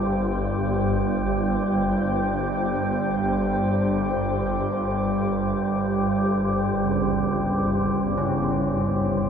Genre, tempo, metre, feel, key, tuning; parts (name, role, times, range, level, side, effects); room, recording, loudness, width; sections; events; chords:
dark ambient drone; free time; A4 = 440 Hz
deep dark ambient pad; sustained chords; 0.0-9.3 s; G3 to D6; -24 LUFS; right 1 dB; chorus, built-in reverb
swarming drone; drone; 0.0-9.3 s; G1 to G2; -26 LUFS; left 1 dB; built-in reverb
wind-like tuned noise texture; texture; 0.0-9.3 s; C5; -32 LUFS; left 1 dB; built-in reverb
carillon bells; arpeggios; 6.8-9.3 s; C#3 to C#4; -28 LUFS; equal; ping-pong delay
wet cathedral reverb, RT60 6.1 s; cassette tape; -21 LUFS; side -7 dB against mid
0.0-9.3 A section
0.0 G5